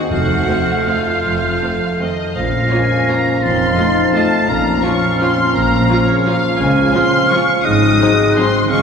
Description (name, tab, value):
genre	classical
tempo	151-185 BPM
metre	3/4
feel	rubato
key	Bb minor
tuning	A4 = 440 Hz
part	rich studio violin section	melody	0.0-8.8 s	Db5 to Eb6	-22 LUFS	left 3 dB	none
part	mellow clarinet	second line	0.0-8.8 s	C4 to Gb4	-24 LUFS	left 1 dB	none
part	warm symphonic violin section	second line	0.0-8.5 s	F4 to Eb5	-29 LUFS	left 1 dB	none
part	mellow French horn section	sustained chords	0.0-8.8 s	Db3 to Eb4	-22 LUFS	left 2 dB	none
part	concert harp	arpeggios	0.0-8.8 s	F2 to C6	-22 LUFS	left 4 dB	none
part	bright oboe	second line	0.1-8.8 s	C5 to F5	-22 LUFS	right 2 dB	none
part	concert flute	second line	0.1-8.8 s	F6 to Bb6	-21 LUFS	equal	none
part	dark bassoon	accompaniment	0.1-8.8 s	F3 to A3	-22 LUFS	right 2 dB	none
part	dark symphonic cello section	bass	0.1-8.8 s	F2 to Db3	-23 LUFS	right 2 dB	none
part	rich studio double bass section	bass	0.1-8.8 s	F1 to Db2	-23 LUFS	right 2 dB	none
part	timpani	percussion	0.1-0.6 s	F2	-27 LUFS	left 1 dB	none
part	rich symphonic viola section	accompaniment	0.5-8.4 s	F3 to F4	-26 LUFS	right 2 dB	none
room	wet cathedral reverb, RT60 4.7 s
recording	recorded in a church or concert hall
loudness	-12 LUFS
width	side -6 dB against mid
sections	0.0-2.4 A section; 2.4-8.8 B section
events	none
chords	0.1 F; 2.4 Bbm; 3.4 F7; 4.5 Bbm; 6.6 Db; 7.7 Ab7